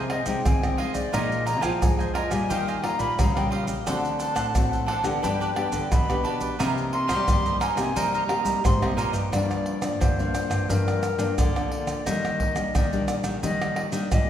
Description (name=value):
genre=samba and choro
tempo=88 BPM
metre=4/4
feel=straight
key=C minor, G minor from 9.3 s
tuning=A4 = 440 Hz
part: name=bright baroque flute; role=second line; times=0.0-14.3 s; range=Bb4 to C6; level=-29 LUFS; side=left 2 dB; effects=none
part: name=cavaquinho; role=accompaniment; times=0.0-9.3 s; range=D4 to Ab5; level=-31 LUFS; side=right 3 dB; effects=none
part: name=nylon-string guitar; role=accompaniment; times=0.0-14.3 s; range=F2 to G4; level=-30 LUFS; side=left 3 dB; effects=none
part: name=nylon-string guitar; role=bass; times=0.0-14.3 s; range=G2 to C4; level=-30 LUFS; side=equal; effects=none
part: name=pandeiro, tamborim, maracas and surdo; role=percussion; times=0.1-14.3 s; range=none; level=-26 LUFS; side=right 1 dB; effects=none
room=wet scoring stage reverb, RT60 1.7 s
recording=recorded in a church or concert hall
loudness=-22 LUFS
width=side -10 dB against mid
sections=0.0-9.3 A section; 9.3-14.3 B section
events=flute solo 0.0-9.3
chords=0.0 Fm7/C; 1.1 Bb7sus4; 2.5 Ebadd9; 3.9 D7; 5.2 G; 6.6 Cm7; 9.3 Gm7; 12.1 Ebmaj7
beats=0.45 | 1.14 1.82 2.50 3.19 | 3.87 4.55 5.23 5.92 | 6.60 7.28 7.96 8.65 | 9.33 10.01 10.70 11.38 | 12.06 12.75 13.43 14.12